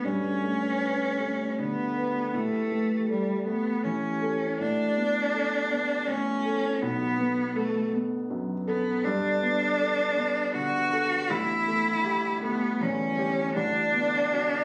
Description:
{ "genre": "neoclassical piano and strings", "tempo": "80 BPM", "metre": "3/4", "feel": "rubato", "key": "unclear", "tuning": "A4 = 440 Hz", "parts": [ { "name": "rich cello", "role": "second line", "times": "0.0-14.6 s", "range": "G3 to F#4", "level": "-29 LUFS", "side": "equal", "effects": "none" }, { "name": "felt-muted upright piano", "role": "accompaniment", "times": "0.0-14.6 s", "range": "A1 to B4", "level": "-32 LUFS", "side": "equal", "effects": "none" }, { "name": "deep dark ambient pad", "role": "sustained chords", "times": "0.0-14.6 s", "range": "D3 to B4", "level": "-42 LUFS", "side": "equal", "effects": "none" } ], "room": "light reverb", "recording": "recorded on a phone in the room, studio reverb, compression", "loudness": "-27 LUFS", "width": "mono", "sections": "0.0-14.6 A section", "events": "none", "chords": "0.0 Gadd9; 2.3 A5; 4.6 D6/A; 6.8 Bm7; 9.0 Gadd9; 11.3 A7sus4; 13.6 D6/A", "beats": "| 0.04 0.82 1.57 | 2.33 3.09 3.84 | 4.59 5.34 6.08 | 6.83 7.57 8.30 | 9.05 9.79 10.55 | 11.31 12.05 12.81 | 13.56 14.33" }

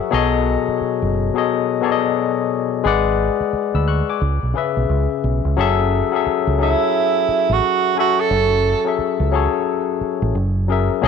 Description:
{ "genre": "R&B, neo-soul", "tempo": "88 BPM", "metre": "4/4", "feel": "swing 62% on 16ths", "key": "F# minor", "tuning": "A4 = 440 Hz", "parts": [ { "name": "barky tine electric piano", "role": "accompaniment", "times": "0.0-11.1 s", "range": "B2 to F#6", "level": "-19 LUFS", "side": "left 10 dB", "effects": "none" }, { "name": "deep dub fingered electric bass", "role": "bass", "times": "0.1-11.1 s", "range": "F#1 to D2", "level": "-20 LUFS", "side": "right 1 dB", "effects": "none" }, { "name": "breathy tenor saxophone", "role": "melody", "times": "6.6-8.9 s", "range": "E4 to A4", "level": "-19 LUFS", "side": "right 10 dB", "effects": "slapback echo" } ], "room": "moderate plate reverb, RT60 3.2 s", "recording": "1960s-style stereo with parts hard left and right", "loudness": "-16 LUFS", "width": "side -6 dB against mid", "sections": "0.0-5.6 A section; 5.6-11.1 B section", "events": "none", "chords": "0.1 B13; 2.8 G#m7b5; 4.2 C#m7; 5.6 F#m9; 10.3 F#9", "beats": "| 0.12 0.80 1.48 2.16 | 2.84 3.52 4.21 4.89 | 5.57 6.25 6.93 7.62 | 8.30 8.98 9.66 10.34 | 11.03" }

